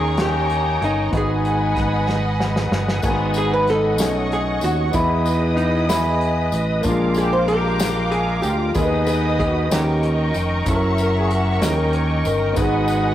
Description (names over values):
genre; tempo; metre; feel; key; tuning
slow gospel; 63 BPM (dotted quarters); 6/8; straight; G# minor; A4 = 440 Hz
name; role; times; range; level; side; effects
archtop guitar, miked and amplified; melody; 0.0-10.4 s; D#4 to B#4; -24 LUFS; right 1 dB; slapback echo
warm saxophone section; melody; 0.0-13.1 s; G#3 to D#5; -25 LUFS; left 2 dB; none
clear concert grand piano; accompaniment; 0.0-13.1 s; G#2 to G#5; -25 LUFS; equal; none
bright tonewheel organ; sustained chords; 0.0-13.1 s; A#4 to D#6; -27 LUFS; right 1 dB; fast rotary speaker, chorus vibrato
warm studio string section; sustained chords; 0.0-13.1 s; D#5 to D#6; -28 LUFS; left 1 dB; none
fingered electric bass; bass; 0.0-13.1 s; E#1 to E2; -22 LUFS; equal; none
warm soul drum kit; drums; 0.2-13.0 s; crash cymbal, hi-hat, kick drum, snare drum; -26 LUFS; equal; none
tambourine; percussion; 3.0-13.1 s; none; -34 LUFS; left 3 dB; none
room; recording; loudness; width
light reverb; rough rehearsal-room recording, tube saturation; -17 LUFS; side -12 dB against mid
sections
0.0-3.0 A section; 3.0-13.1 A section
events
drum fill 2.1-3.0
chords
0.0 D#7; 1.1 G#m7; 4.0 B13; 4.9 Emaj7; 6.8 A#7; 8.8 G#m/D#; 9.7 D#7; 10.7 F#7; 11.6 D#7; 12.6 G#m7